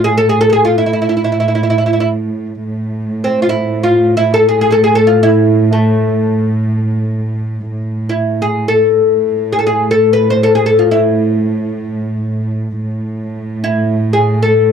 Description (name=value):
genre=Arabic maqam ensemble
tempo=free time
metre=none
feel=none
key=unclear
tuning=A4 = 439 Hz
part: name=oud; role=melody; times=0.0-14.7 s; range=A3 to C5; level=-12 LUFS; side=left 1 dB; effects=none
part: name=warm chamber cello section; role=drone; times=0.0-14.7 s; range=A2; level=-16 LUFS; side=right 1 dB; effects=none
room=light reverb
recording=dry, close 1970s-style studio recording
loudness=-11 LUFS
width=side -7 dB against mid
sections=0.0-7.7 A section; 7.7-14.7 A section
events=none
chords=none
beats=free time